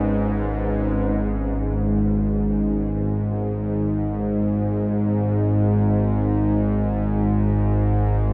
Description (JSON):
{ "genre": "dark ambient drone", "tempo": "free time", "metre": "none", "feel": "none", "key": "unclear", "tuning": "A4 = 439 Hz", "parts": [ { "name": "deep dark ambient pad", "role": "sustained chords", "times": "0.0-1.0 s", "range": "G#3 to B4", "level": "-31 LUFS", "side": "equal", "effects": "chorus, built-in reverb" }, { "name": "bowed-like drone", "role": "drone", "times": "0.0-8.3 s", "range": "G#1 to G#2", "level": "-22 LUFS", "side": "equal", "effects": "built-in reverb" }, { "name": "bubbling stepped-filter texture", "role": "texture", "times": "0.0-0.9 s", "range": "F#5", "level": "-50 LUFS", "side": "equal", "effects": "none" } ], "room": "moderate huge ambient reverb, RT60 8.6 s", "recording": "nothing above 10.8 kHz", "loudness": "-22 LUFS", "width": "mono", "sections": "0.9-8.3 A section", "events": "none", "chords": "0.0 B/G#; 0.9 N.C." }